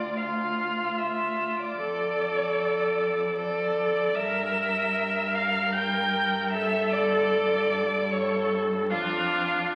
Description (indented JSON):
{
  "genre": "classical, slow romantic movement for string quartet",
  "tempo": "76 BPM",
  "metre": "3/4",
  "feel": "rubato",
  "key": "D minor",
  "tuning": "A4 = 441 Hz",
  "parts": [
    { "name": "rich violin", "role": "melody", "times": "0.0-9.8 s", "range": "F5 to G6", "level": "-34 LUFS", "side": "equal", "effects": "none" },
    { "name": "rich violin", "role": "second line", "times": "0.0-9.8 s", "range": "F4 to G5", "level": "-31 LUFS", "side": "equal", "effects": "none" },
    { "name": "clear viola", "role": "accompaniment", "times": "0.0-9.8 s", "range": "D4 to Bb4", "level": "-30 LUFS", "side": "equal", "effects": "none" },
    { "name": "warm cello", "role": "bass", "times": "0.0-9.8 s", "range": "D2 to G2", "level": "-36 LUFS", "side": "equal", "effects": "none" }
  ],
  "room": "wet recital hall reverb, RT60 1.7 s",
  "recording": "very old 78 rpm record, vinyl crackle",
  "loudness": "-26 LUFS",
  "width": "mono",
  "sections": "0.0-9.8 A section",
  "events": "none",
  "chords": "0.0 Dm; 1.8 Dm/F; 4.2 Edim/G; 6.5 Gsus2; 8.9 Dm/F",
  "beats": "0.18 0.99 | 1.80 2.58 3.37 | 4.17 4.96 5.74 | 6.54 7.33 8.12 | 8.92"
}